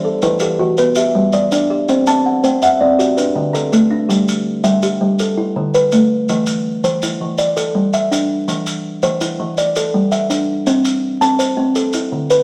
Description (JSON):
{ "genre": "southern african traditional, mbira-style interlocking cycle", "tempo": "110 BPM (dotted quarters)", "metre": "12/8", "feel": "straight", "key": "G major", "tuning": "A4 = 440 Hz", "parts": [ { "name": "kalimba", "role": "arpeggios", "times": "0.0-12.4 s", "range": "D3 to A5", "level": "-17 LUFS", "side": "equal", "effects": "none" }, { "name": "kalimba", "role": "arpeggios", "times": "0.0-4.5 s", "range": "D3 to G5", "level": "-21 LUFS", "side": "equal", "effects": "none" }, { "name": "maracas", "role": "percussion", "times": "0.2-12.4 s", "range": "none", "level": "-29 LUFS", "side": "equal", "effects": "none" } ], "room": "moderate large studio reverb, RT60 1.1 s", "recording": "vinyl crackle", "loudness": "-16 LUFS", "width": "mono", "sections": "0.0-4.1 A section; 4.1-12.4 B section", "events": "none", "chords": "0.0 Em; 0.8 G; 1.9 C; 3.0 D; 4.1 G5; 5.2 D5; 6.3 C/E; 7.4 G5; 8.5 C/E; 9.6 G5; 10.7 Am/C; 11.8 D5" }